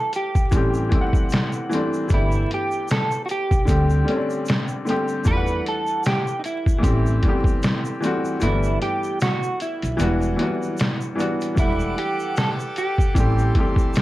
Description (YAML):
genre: lo-fi hip hop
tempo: 76 BPM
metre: 4/4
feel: swing 57% on 16ths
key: E minor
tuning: A4 = 439 Hz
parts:
  - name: clean electric guitar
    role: melody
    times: 0.0-14.0 s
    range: D#4 to B4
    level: -26 LUFS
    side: right 2 dB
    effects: analog chorus, plate reverb
  - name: clear upright piano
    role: accompaniment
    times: 0.0-14.0 s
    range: D3 to F#5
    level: -24 LUFS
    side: left 1 dB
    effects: plate reverb
  - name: trip hop sampler-style drum kit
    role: drums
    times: 0.1-14.0 s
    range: hi-hat, kick drum, snare drum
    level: -21 LUFS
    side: equal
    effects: none
  - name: tube shaker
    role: percussion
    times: 0.1-14.0 s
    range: none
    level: -44 LUFS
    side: right 5 dB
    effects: none
  - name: upright bass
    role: bass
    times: 0.5-13.5 s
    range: E1 to E2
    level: -22 LUFS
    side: equal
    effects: none
  - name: pipe organ, full organ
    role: sustained chords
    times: 11.6-14.0 s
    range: G4 to D6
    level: -31 LUFS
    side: right 2 dB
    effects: plate reverb
room: moderate small room reverb, RT60 0.5 s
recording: vinyl crackle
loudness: -19 LUFS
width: side -16 dB against mid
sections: 0.0-11.6 A section; 11.6-14.0 A section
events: kick muted 8.4-11.6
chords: 0.0 Em11; 0.5 Am7; 2.1 G69; 3.7 D7sus4; 5.3 Em11; 6.8 Am7; 8.4 G69; 10.0 Em9; 11.6 Em11; 13.2 Am7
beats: 0.52 1.31 | 2.10 2.89 3.68 4.47 | 5.26 6.05 6.84 7.63 | 8.42 9.21 10.00 10.79 | 11.57 12.37 13.15 13.94